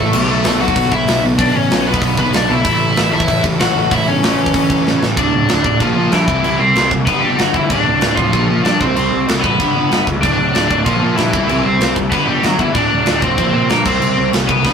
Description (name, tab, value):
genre	punk rock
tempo	190 BPM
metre	4/4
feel	straight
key	unclear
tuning	A4 = 440 Hz
part	cranked stack guitar	melody	0.0-14.7 s	E3 to F#5	-16 LUFS	equal	overdrive, ping-pong delay
part	sludgy distorted guitar	riff	0.0-14.7 s	D2 to C4	-20 LUFS	equal	overdrive
part	fuzz picked electric bass	bass	0.0-14.7 s	D1 to Bb2	-20 LUFS	equal	overdrive
part	tight metal drum kit	drums	0.1-14.7 s	crash cymbal, hi-hat, kick drum, snare drum	-18 LUFS	equal	none
room	light reverb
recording	rough rehearsal-room recording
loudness	-12 LUFS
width	side -6 dB against mid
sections	0.0-5.2 A section; 5.2-14.7 B section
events	drum fill 4.9-5.2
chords	0.1 Bm; 2.7 A; 5.2 D5; 5.8 Bb5; 6.3 C; 7.1 G; 7.7 D5; 8.3 Bb; 8.8 C5; 9.6 G; 10.2 D5; 10.9 Bb5; 11.3 C; 12.1 G; 12.8 D5; 13.4 Bb5; 13.9 C5